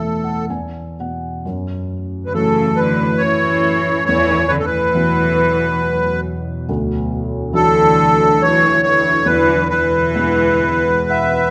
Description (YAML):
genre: celtic folk, Celtic slow air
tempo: 69 BPM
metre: 3/4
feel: uneven beats, rubato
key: unclear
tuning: A4 = 442 Hz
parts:
  - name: accordion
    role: melody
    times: 0.0-11.5 s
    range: A4 to E5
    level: -17 LUFS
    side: equal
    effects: light tremolo tuning
  - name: felt-muted upright piano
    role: accompaniment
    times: 0.0-11.5 s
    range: D2 to G#5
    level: -23 LUFS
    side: equal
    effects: none
  - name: deep dark ambient pad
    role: sustained chords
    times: 2.1-11.5 s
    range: E2 to A3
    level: -28 LUFS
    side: equal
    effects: chorus, built-in reverb
  - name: warm cello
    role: second line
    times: 2.3-11.5 s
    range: C#3 to E3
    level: -24 LUFS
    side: equal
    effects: none
room: moderate scoring stage reverb, RT60 1.7 s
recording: none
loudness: -16 LUFS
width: mono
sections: 0.0-1.4 A section; 1.4-11.5 B section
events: felt piano fill 0.0-1.4, 10.6-11.5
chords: 0.5 E; 1.4 F#m7; 4.1 Esus2; 6.7 Dadd9; 9.3 E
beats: 0.48 | 1.44 2.33 3.21 | 4.08 4.94 5.80 | 6.68 7.55 8.40 | 9.26 10.15 11.10